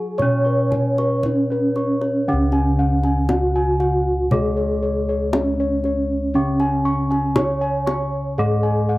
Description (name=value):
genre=Javanese gamelan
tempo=59 BPM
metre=4/4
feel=straight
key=unclear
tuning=A4 = 441 Hz
part: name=gamelan-type bronze metallophone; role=melody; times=0.0-9.0 s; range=Db4 to Db5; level=-21 LUFS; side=right 1 dB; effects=cassette tape, tape echo
part: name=gamelan-type bronze metallophone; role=accompaniment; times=0.0-9.0 s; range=Db3 to Db4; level=-25 LUFS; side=equal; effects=none
part: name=gamelan-type bronze metallophone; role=arpeggios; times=0.0-2.3 s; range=Db5 to Db6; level=-30 LUFS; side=right 1 dB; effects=none
part: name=gamelan-type bossed gongs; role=bass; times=0.0-9.0 s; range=Db2 to Gb4-35c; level=-23 LUFS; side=equal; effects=none
part: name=gamelan-type bossed gongs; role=arpeggios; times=0.2-9.0 s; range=Cb5-45c to Db6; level=-25 LUFS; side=left 2 dB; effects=none
part: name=kendang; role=percussion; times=0.2-8.1 s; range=none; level=-24 LUFS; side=left 1 dB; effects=none
room=light reverb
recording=home recording on cassette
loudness=-17 LUFS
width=side -18 dB against mid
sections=0.0-2.3 A section; 2.3-9.0 B section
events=none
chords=none